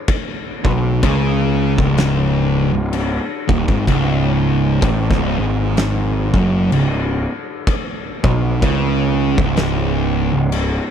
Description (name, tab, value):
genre	stoner and doom metal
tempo	63 BPM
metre	4/4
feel	swing 60% on 8ths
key	unclear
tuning	A4 = 436 Hz
part	oversized low-tuned drum kit	drums	0.1-10.8 s	crash cymbal, kick drum, snare drum	-21 LUFS	equal	none
part	fuzz guitar	riff	0.6-10.7 s	C#2 to C#3	-17 LUFS	right 1 dB	distortion
part	fuzz picked electric bass	bass	0.6-10.8 s	C#1 to C#2	-20 LUFS	equal	overdrive
room	studio ambience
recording	none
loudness	-15 LUFS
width	side -8 dB against mid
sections	0.0-10.9 A section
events	none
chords	0.0 C#5